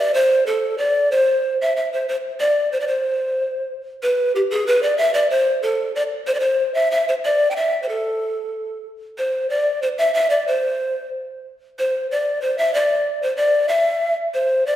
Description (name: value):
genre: andean folk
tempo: 93 BPM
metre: 2/4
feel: straight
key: unclear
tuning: A4 = 440 Hz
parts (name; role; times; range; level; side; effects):
- breathy mellow large pan pipes; solo; 0.0-14.8 s; G4 to G5; -18 LUFS; equal; none
room: wet recital hall reverb, RT60 1.6 s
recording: recorded in a church or concert hall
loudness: -17 LUFS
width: side -12 dB against mid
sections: 0.0-9.2 A section; 9.2-14.8 B section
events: none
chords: none